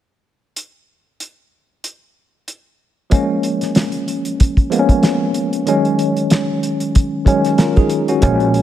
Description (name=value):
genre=hip hop, boom-bap hip-hop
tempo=94 BPM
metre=4/4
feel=swing 56% on 16ths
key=Bb minor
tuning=A4 = 440 Hz
part: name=cloth-damped thuddy drum kit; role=drums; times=0.6-8.6 s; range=hi-hat, kick drum, snare drum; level=-16 LUFS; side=equal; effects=none
part: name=mellow tine electric piano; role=accompaniment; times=3.1-8.6 s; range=Eb3 to Bb4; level=-16 LUFS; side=equal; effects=medium stereo tremolo, cassette tape, high-pass filter, low-pass filter
part: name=upright bass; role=bass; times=8.2-8.6 s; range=Bb1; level=-18 LUFS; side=equal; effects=none
room=light reverb, studio reverb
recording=none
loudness=-14 LUFS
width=side -12 dB against mid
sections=0.6-3.1 A section; 3.1-8.2 B section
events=none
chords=0.6 N.C.; 3.1 Bbm7; 5.7 Ebm11